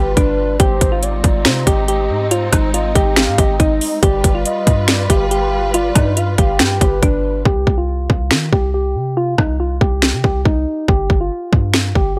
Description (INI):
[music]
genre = hip hop, trap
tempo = 140 BPM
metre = 4/4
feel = half-time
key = C harmonic minor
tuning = A4 = 440 Hz
[part]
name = soft electric-piano-like synth keys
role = melody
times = 0.0-12.2 s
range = D4 to G4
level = -22 LUFS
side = equal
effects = chorus, low-pass filter
[part]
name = gliding portamento lead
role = second line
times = 0.0-7.4 s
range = B4 to G5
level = -25 LUFS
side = equal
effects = chorus, analog delay
[part]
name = warm studio string section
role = sustained chords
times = 0.0-7.4 s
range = G3 to B4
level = -28 LUFS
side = equal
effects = none
[part]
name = warm 808-style bass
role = bass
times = 0.0-12.2 s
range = G1 to Eb3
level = -22 LUFS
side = equal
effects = none
[part]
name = trap drum kit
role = drums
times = 0.2-12.1 s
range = finger snaps, hi-hat, kick drum, rim click, snare drum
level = -17 LUFS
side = equal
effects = overdrive
[sound]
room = little or no reverb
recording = dry, gritty hardware recording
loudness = -16 LUFS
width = mono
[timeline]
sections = 0.0-7.5 A section; 7.5-12.2 B section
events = hi-hats muted 7.5-12.2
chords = 0.0 G7; 0.6 Ab; 4.0 G7; 7.5 Cm; 10.9 G5